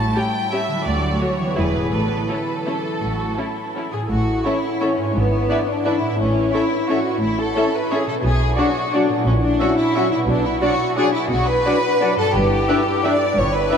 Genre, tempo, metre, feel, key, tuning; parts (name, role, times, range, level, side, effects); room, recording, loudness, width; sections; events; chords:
classical, orchestral ballroom waltz; 154-189 BPM; 3/4; rubato; A major; A4 = 439 Hz
bright studio violin section; melody; 0.0-13.8 s; A4 to A5; -29 LUFS; equal
rich studio violin section; second line; 0.0-13.8 s; B3 to D5; -22 LUFS; left 1 dB
concert harp; arpeggios; 0.0-13.8 s; G2 to C#5; -25 LUFS; right 1 dB
rich studio cello section; bass; 0.0-13.6 s; D2 to B2; -26 LUFS; equal
rich studio double bass section; bass; 0.0-13.6 s; E1 to D2; -24 LUFS; equal
rich studio viola section; accompaniment; 0.1-13.8 s; G#3 to B4; -28 LUFS; left 1 dB
mellow flute section; second line; 4.4-13.8 s; E5 to G5; -31 LUFS; equal
warm clarinet; second line; 4.4-13.8 s; C#4 to E4; -29 LUFS; left 3 dB
dark French horn section; sustained chords; 4.4-13.8 s; E3 to E4; -28 LUFS; left 1 dB
warm cor anglais; second line; 4.5-13.8 s; C#5 to E5; -28 LUFS; right 3 dB
wet cathedral reverb, RT60 7.0 s; in a vast, echoing space; -17 LUFS; side -7 dB against mid
0.0-4.1 A section; 4.1-13.8 A section
0.0 A7; 0.9 D; 1.6 E; 1.9 A; 5.2 E7/G#; 6.2 A; 8.2 Bm; 9.3 F#7/A#; 10.3 Bm; 12.3 Em7/G